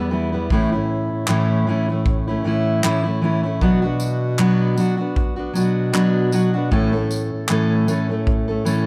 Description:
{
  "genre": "acoustic pop",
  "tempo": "77 BPM",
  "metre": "4/4",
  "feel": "swing 55% on 16ths",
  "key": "unclear",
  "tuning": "A4 = 440 Hz",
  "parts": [
    { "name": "fingerpicked steel-string acoustic guitar", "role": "accompaniment", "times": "0.0-8.9 s", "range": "A2 to A4", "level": "-21 LUFS", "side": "equal", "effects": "none" },
    { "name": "dark bass clarinet", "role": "bass", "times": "0.0-8.9 s", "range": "E2 to B2", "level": "-26 LUFS", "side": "equal", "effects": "none" },
    { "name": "loose indie drum kit", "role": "drums", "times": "0.5-8.9 s", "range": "handclaps, kick drum, tambourine", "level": "-26 LUFS", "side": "equal", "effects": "none" }
  ],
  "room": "light reverb",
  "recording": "none",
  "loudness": "-20 LUFS",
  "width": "mono",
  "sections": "0.0-8.9 A section",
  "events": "none",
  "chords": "0.0 Em; 0.5 A; 3.6 Bm; 6.7 A"
}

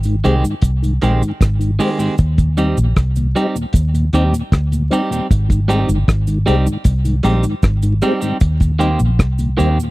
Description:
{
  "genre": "roots reggae",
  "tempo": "77 BPM",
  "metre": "4/4",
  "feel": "straight",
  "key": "Eb major",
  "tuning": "A4 = 437 Hz",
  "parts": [
    { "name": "vintage muted fingered electric bass", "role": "bass", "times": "0.0-9.8 s", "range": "G1 to Eb2", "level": "-15 LUFS", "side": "equal", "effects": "none" },
    { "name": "cabasa", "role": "percussion", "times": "0.0-9.9 s", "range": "none", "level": "-36 LUFS", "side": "right 8 dB", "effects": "none" },
    { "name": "mellow tonewheel organ", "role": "accompaniment", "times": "0.1-9.9 s", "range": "Eb2 to G4", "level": "-19 LUFS", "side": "left 1 dB", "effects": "chorus vibrato, slow rotary speaker" },
    { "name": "cloth-damped thuddy drum kit", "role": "drums", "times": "0.1-9.8 s", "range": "hi-hat, kick drum, rim click", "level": "-14 LUFS", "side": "equal", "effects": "none" },
    { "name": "clean electric guitar", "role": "accompaniment", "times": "0.2-9.8 s", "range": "Eb3 to G4", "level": "-20 LUFS", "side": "right 2 dB", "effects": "tape echo" }
  ],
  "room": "little or no reverb",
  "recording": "dry, close 1970s-style studio recording, vinyl crackle",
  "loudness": "-13 LUFS",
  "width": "side -20 dB against mid",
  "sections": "0.0-9.9 A section",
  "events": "none",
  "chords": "0.0 Abmaj7; 2.2 Eb6; 5.3 Abmaj7; 8.4 Eb6"
}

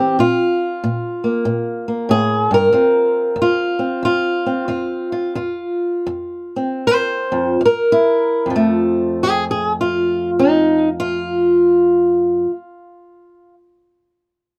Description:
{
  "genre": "acoustic country blues, solo or duo",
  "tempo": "68-94 BPM",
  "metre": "4/4",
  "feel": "swing 65% on 8ths",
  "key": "F major",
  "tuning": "A4 = 441 Hz",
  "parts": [
    { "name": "fingerpicked old ladder-braced acoustic guitar", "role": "solo", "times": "0.0-13.5 s", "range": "F2 to C5", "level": "-17 LUFS", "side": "equal", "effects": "none" }
  ],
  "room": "moderate booth ambience, RT60 0.3 s",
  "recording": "none",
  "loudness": "-17 LUFS",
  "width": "mono",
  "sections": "0.0-8.5 A section; 8.5-12.0 B section",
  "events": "slowing down 2.7-8.5",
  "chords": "0.2 Bb5; 2.7 F5; 7.6 N.C.; 8.5 F"
}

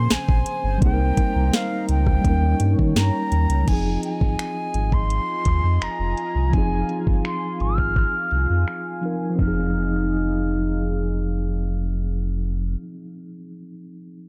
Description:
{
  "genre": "contemporary R&B",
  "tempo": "84 BPM",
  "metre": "4/4",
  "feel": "straight",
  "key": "F minor",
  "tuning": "A4 = 440 Hz",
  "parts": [
    { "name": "breathy concert flute", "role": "melody", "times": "0.0-12.8 s", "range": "F5 to F6", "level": "-30 LUFS", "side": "equal", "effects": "digital delay" },
    { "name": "mellow tine electric piano", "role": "accompaniment", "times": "0.0-14.3 s", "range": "F3 to Bb4", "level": "-30 LUFS", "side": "equal", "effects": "none" },
    { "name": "chorused pulse-width pad", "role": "sustained chords", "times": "0.0-12.8 s", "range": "Db3 to Bb5", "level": "-34 LUFS", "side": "equal", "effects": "sidechain pumping" },
    { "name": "sub bass with octave", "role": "bass", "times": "0.0-12.8 s", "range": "F1 to Eb3", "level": "-24 LUFS", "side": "equal", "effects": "none" },
    { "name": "worn celesta", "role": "texture", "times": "0.0-0.5 s", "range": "none", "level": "barely audible", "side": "none", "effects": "none" },
    { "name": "smooth R&B drum kit", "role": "drums", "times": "0.1-9.6 s", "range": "crash cymbal, finger snaps, hi-hat, kick drum, rim click, snare drum, toms", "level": "-24 LUFS", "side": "equal", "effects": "none" }
  ],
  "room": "digital ambience",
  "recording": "low-pass filter",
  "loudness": "-22 LUFS",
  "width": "mono",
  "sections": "0.0-3.7 A section; 3.7-9.4 B section; 9.4-12.2 C section",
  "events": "filter sweep 3.7-9.4",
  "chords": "0.0 Bbm9; 0.8 Cm7; 2.2 Eb7; 3.7 Fm7"
}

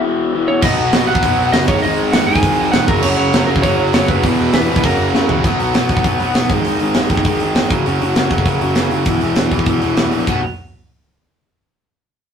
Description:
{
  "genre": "punk rock",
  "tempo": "199 BPM",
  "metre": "4/4",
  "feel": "straight",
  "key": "B major",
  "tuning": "A4 = 439 Hz",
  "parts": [
    { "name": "raw garage guitar", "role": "riff", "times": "0.0-10.4 s", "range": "E2 to B3", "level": "-18 LUFS", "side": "left 4 dB", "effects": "overdrive" },
    { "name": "lightly driven lead guitar", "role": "melody", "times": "0.5-5.3 s", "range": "A#4 to G#5", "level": "-20 LUFS", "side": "right 3 dB", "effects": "none" },
    { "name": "heavy high-gain guitar", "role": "riff", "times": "0.6-5.4 s", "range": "E2 to B3", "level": "-25 LUFS", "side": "right 2 dB", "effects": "distortion" },
    { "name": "tight distorted guitar", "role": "riff", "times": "0.6-10.4 s", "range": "E2 to B3", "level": "-21 LUFS", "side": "right 7 dB", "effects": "distortion" },
    { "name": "fuzz picked electric bass", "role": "bass", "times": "0.6-10.4 s", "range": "E1 to F#2", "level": "-23 LUFS", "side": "right 1 dB", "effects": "overdrive" },
    { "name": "tight metal drum kit", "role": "drums", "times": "0.6-10.3 s", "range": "crash cymbal, hi-hat, kick drum, snare drum, toms", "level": "-17 LUFS", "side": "right 1 dB", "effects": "none" }
  ],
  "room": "moderate studio reverb, RT60 0.6 s",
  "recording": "rough rehearsal-room recording, tube saturation",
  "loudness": "-13 LUFS",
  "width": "side -7 dB against mid",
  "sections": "0.0-5.4 A section; 5.4-10.3 B section; 10.3-11.5 C section",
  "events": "drum fill 5.1-5.4",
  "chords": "0.0 E5; 0.6 B; 1.7 G#5; 2.9 F#5; 4.2 E5; 4.8 F#; 5.4 B5; 6.5 G#5; 7.7 F#5; 9.1 E5; 10.3 B5"
}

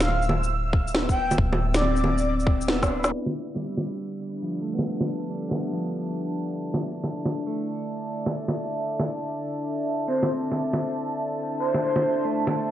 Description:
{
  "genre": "future garage",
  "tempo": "138 BPM",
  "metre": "4/4",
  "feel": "swing 66% on 16ths",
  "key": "D dorian",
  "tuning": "A4 = 440 Hz",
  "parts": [
    { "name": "breathy flute-like synth lead", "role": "melody", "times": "0.0-2.3, 10.1-12.3 s", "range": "C5 to G5", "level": "-28 LUFS", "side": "equal", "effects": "analog chorus, cassette tape, tape echo" },
    { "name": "dark analog pad", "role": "sustained chords", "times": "0.0-12.7 s", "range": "D4 to A5", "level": "-31 LUFS", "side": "equal", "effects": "chorus, phaser, sidechain pumping" },
    { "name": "soft 808-style bass", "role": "bass", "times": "0.0-3.1 s", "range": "D1", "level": "-26 LUFS", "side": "equal", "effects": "sidechain pumping" },
    { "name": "electronic snare drum, shaker and bongos", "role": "drums", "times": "0.0-12.6 s", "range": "none", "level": "-27 LUFS", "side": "equal", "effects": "overdrive, low-pass filter on perc, low-pass filter on snare, low-pass filter on room" },
    { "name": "backwards swelling texture", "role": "texture", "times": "0.0-3.1 s", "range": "E6", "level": "-35 LUFS", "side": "right 1 dB", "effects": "built-in reverb" },
    { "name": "electronic kick drum", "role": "drums", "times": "0.7-2.9 s", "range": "none", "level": "-23 LUFS", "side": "equal", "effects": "overdrive" },
    { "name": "mellow electric guitar", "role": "accompaniment", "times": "0.9-12.7 s", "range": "F3 to E4", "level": "-31 LUFS", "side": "equal", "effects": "sidechain pumping, low-pass filter, tape echo" }
  ],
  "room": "moderate concert hall reverb, RT60 2.0 s",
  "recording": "low-pass filter, nothing above 11.0 kHz",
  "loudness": "-24 LUFS",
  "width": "side -12 dB against mid",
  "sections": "0.0-3.1 A section; 3.1-12.7 B section",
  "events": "drum fill 2.8-3.1",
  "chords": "0.0 D7sus2; 3.1 Dm9"
}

